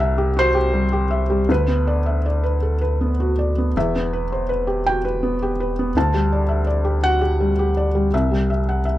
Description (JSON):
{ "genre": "neoclassical piano and strings", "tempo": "55 BPM (dotted quarters)", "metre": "6/8", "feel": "rubato", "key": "E minor", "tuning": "A4 = 440 Hz", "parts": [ { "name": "felt-muted upright piano", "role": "accompaniment", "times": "0.0-9.0 s", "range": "C2 to A5", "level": "-20 LUFS", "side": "equal", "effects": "none" }, { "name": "punchy sub bass", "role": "bass", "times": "0.0-9.0 s", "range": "E1 to D2", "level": "-21 LUFS", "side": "equal", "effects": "none" } ], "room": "little or no reverb", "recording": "dry, close 1970s-style studio recording", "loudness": "-17 LUFS", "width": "side -14 dB against mid", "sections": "0.0-9.0 A section", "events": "none", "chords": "0.0 C; 1.5 Bm/D; 3.7 Em; 6.0 Dsus4; 8.1 C" }